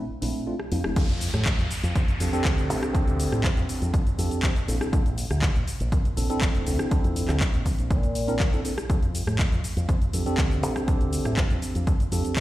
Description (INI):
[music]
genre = filtered disco house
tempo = 121 BPM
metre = 4/4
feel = straight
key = F major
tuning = A4 = 437 Hz
[part]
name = tine electric piano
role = accompaniment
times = 0.0-12.4 s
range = A3 to C5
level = -30 LUFS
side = right 1 dB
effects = phaser, sidechain pumping, low-pass filter
[part]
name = fingered electric bass with an envelope filter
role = bass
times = 0.1-12.2 s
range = F1 to Bb2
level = -27 LUFS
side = equal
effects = sidechain pumping, low-pass filter
[part]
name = house drum kit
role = drums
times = 0.2-12.4 s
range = crash cymbal, handclaps, hi-hat, rim click, shaker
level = -32 LUFS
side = equal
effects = overdrive, sidechain pumping on hats, sidechain pumping on cymbals, sidechain pumping on perc
[part]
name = electronic kick drum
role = drums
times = 1.0-12.4 s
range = none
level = -23 LUFS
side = equal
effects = none
[part]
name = downlifter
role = sound effects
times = 1.0-4.9 s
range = none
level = -37 LUFS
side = equal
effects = none
[sound]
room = digital ambience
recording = played on a big sound system in a bare room, large studio reverb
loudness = -22 LUFS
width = side -15 dB against mid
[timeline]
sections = 1.0-12.4 A section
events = drop 1.0-12.4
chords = 0.0 Bbmaj9#11; 1.0 F69; 4.7 Bbmaj9#11; 8.9 F69